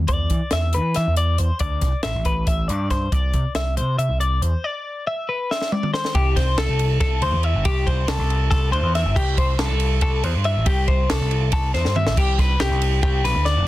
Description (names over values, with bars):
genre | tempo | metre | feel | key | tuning
math rock and midwest emo | 279 BPM (eighths) | 7/8 | straight | C major | A4 = 440 Hz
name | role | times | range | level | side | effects
overdriven picked electric bass | bass | 0.0-13.7 s | F1 to E3 | -21 LUFS | equal | none
twelve-string electric guitar | arpeggios | 0.1-13.7 s | G4 to E5 | -24 LUFS | left 3 dB | none
compact cocktail drum kit | drums | 0.1-13.6 s | crash cymbal, hi-hat, kick drum, ride cymbal, snare drum, toms | -23 LUFS | right 1 dB | soft clipping on snare
room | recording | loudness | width
little or no reverb | dense, heavily limited modern master | -18 LUFS | side -16 dB against mid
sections
0.0-6.2 A section; 6.2-13.7 B section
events
break 4.6-6.2; drum fill 5.5-6.2, 11.8-12.2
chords
0.1 E5; 1.6 Dsus2; 3.1 C; 4.6 Cmaj9; 6.2 Am7; 9.2 C; 12.2 G